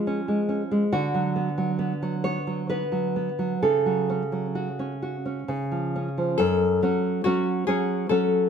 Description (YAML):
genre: romantic duo for nylon-string guitar and classical guitar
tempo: 64-72 BPM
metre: 3/4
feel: rubato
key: F# minor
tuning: A4 = 438 Hz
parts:
  - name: nylon-string guitar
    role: accompaniment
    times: 0.0-8.5 s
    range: F#2 to C#5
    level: -24 LUFS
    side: right 2 dB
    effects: none
  - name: nylon-string guitar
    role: melody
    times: 6.4-8.5 s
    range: F#4 to A4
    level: -23 LUFS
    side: left 7 dB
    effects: none
room: moderate stone room reverb, RT60 1.1 s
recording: band playing live in one room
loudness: -23 LUFS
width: side -7 dB against mid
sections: 0.0-6.4 A section; 6.4-8.5 B section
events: none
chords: 0.0 C#/E#; 0.9 Bm/D; 3.6 F#m/C#; 5.5 C#; 6.4 F#m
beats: 0.06 | 0.91 1.78 2.68 | 3.60 4.53 5.46 | 6.37 7.24 8.09